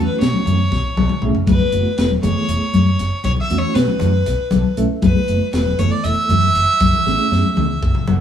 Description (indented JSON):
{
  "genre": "electric jazz fusion",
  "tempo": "237 BPM (eighths)",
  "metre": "7/8",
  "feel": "straight",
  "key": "F# minor",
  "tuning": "A4 = 440 Hz",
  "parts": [
    { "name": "bright violin", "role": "melody", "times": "0.0-8.1 s", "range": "B4 to E5", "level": "-20 LUFS", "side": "equal", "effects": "none" },
    { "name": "reed electric piano", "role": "accompaniment", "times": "0.0-8.2 s", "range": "A3 to A5", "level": "-23 LUFS", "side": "right 3 dB", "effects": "fast tremolo" },
    { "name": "fingered electric bass", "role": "bass", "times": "0.0-8.2 s", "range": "E1 to B2", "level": "-20 LUFS", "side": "equal", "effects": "none" },
    { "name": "congas", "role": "percussion", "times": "0.1-8.2 s", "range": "none", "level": "-20 LUFS", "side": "left 4 dB", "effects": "none" },
    { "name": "crisp fusion drum kit", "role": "drums", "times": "0.2-8.2 s", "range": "hi-hat, kick drum, snare drum, toms", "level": "-22 LUFS", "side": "left 1 dB", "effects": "none" }
  ],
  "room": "moderate stone room reverb, RT60 1.1 s",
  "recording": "band playing live in one room",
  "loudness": "-14 LUFS",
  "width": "side -9 dB against mid",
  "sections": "0.0-8.2 A section",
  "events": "drum fill 0.7-1.5, 7.1-8.2; reed electric piano fill 0.7-1.5, 4.3-5.0, 7.8-8.2",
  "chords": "0.0 B9sus4; 1.5 F#m11; 3.3 B9sus4; 5.0 F#m11; 6.8 F#m9",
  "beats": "0.21 0.47 0.72 0.97 1.23 | 1.48 1.73 1.99 2.24 2.49 2.75 3.00 | 3.25 3.51 3.76 4.01 4.27 4.52 4.77 | 5.03 5.28 5.54 5.79 6.04 6.30 6.55 | 6.81 7.06 7.32 7.57 7.82 8.08"
}